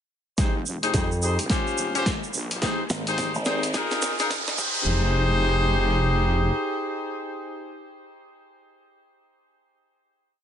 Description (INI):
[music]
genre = glitch hop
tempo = 107 BPM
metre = 4/4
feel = swing 61% on 16ths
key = F minor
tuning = A4 = 442 Hz
[part]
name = warm horn section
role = stabs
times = 0.4-7.9 s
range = Db4 to C5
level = -26 LUFS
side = left 2 dB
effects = sidechain pumping, low-pass filter, ping-pong delay
[part]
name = wobble bass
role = bass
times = 0.4-6.5 s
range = Eb1 to F2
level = -25 LUFS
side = equal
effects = chorus, overdrive, high-pass filter
[part]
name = boom bap sampler-style drum kit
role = drums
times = 0.4-4.7 s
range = crash cymbal, hi-hat, snare drum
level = -30 LUFS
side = equal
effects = none
[part]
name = electronic kick drum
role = drums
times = 0.4-4.7 s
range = none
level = -27 LUFS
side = equal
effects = none
[part]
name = tube shaker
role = percussion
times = 0.4-4.8 s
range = none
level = -33 LUFS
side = right 4 dB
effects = none
[part]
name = riser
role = sound effects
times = 2.4-4.9 s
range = none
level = -32 LUFS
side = right 2 dB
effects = none
[part]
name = slap bass with an envelope filter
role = bass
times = 0.9-3.7 s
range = Ab1 to F2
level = -26 LUFS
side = equal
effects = none
[sound]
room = light reverb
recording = high-pass filter, nothing above 10.6 kHz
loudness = -22 LUFS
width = side -9 dB against mid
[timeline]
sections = 0.4-4.9 build; 4.9-7.1 final hit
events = build-up 0.4-4.9; drum fill 0.4-4.9; filter sweep 0.4-4.9; riser 2.4-4.9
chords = 0.4 Fm7; 1.5 Eb13; 2.6 Abmaj7; 3.7 Db6; 4.6 Fm7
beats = | 0.38 0.94 1.50 2.06 | 2.62 3.18 3.74 4.30 | 4.86 5.42 5.98 6.54